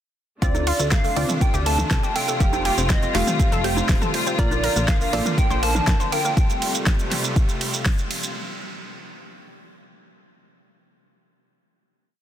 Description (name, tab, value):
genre	progressive house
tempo	121 BPM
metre	4/4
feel	straight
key	F major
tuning	A4 = 436 Hz
part	plucky unison lead	melody	0.4-6.8 s	D5 to A5	-27 LUFS	right 1 dB	digital delay
part	rich studio string section	sustained chords	0.4-8.3 s	C3 to F4	-29 LUFS	left 2 dB	sidechain pumping
part	analog pluck	arpeggios	0.4-6.3 s	A3 to C5	-30 LUFS	left 1 dB	chorus, sidechain pumping, digital delay
part	wide unison pluck	stabs	0.4-6.3 s	A3 to G5	-30 LUFS	right 2 dB	auto-pan, sidechain pumping, digital delay
part	plucky analog bass	bass	0.4-6.0 s	Eb1 to D2	-26 LUFS	equal	tube saturation, sidechain pumping
part	electronic kick drum	drums	0.4-8.0 s	none	-20 LUFS	equal	none
part	pop drum kit	drums	0.4-8.3 s	hi-hat, ride cymbal, shaker, snare drum	-27 LUFS	right 2 dB	sidechain pumping on hats, sidechain pumping on perc, sidechain pumping on cymbals
part	electronic congas and toms	percussion	0.5-5.8 s	none	-31 LUFS	right 2 dB	overdrive, sidechain pumping on perc, sidechain pumping on toms
room	light reverb, digital ambience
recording	dense, heavily limited modern master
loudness	-18 LUFS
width	side -11 dB against mid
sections	0.4-8.4 drop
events	drop 0.4-8.4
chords	0.4 Dm7; 2.4 Fadd9; 4.4 Bb; 6.4 Fadd9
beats	| 0.42 0.92 1.41 1.91 | 2.40 2.90 3.40 3.89 | 4.39 4.88 5.38 5.87 | 6.37 6.87 7.36 7.86